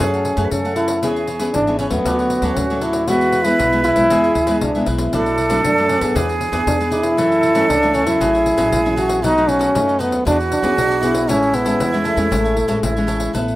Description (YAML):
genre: samba and choro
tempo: 117 BPM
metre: 4/4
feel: straight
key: A major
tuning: A4 = 444 Hz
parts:
  - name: mellow trombone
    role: melody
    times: 0.0-13.1 s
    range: A3 to F#4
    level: -18 LUFS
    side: equal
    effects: none
  - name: breathy concert flute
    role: second line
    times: 0.0-13.3 s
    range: E4 to B4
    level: -21 LUFS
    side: right 3 dB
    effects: none
  - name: cavaquinho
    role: accompaniment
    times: 0.0-13.6 s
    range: D4 to A5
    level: -31 LUFS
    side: right 2 dB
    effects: none
  - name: nylon-string guitar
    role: accompaniment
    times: 0.0-13.6 s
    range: F#2 to G#4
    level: -22 LUFS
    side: left 2 dB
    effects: none
  - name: upright bass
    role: bass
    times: 0.0-13.6 s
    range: G#1 to F#2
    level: -26 LUFS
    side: equal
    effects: none
  - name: pandeiro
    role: percussion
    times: 0.0-13.6 s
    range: none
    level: -27 LUFS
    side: left 4 dB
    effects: none
room: light reverb, small room ambience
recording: rough home demo mix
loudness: -14 LUFS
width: side -16 dB against mid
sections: 0.0-13.3 A section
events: none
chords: 0.0 F#madd9; 1.0 C#m7/E; 2.1 Dmaj7; 3.1 E; 5.1 Bm7; 6.2 E7; 7.2 F#m7; 8.2 A6; 9.2 B7; 10.3 E7; 11.3 Amaj7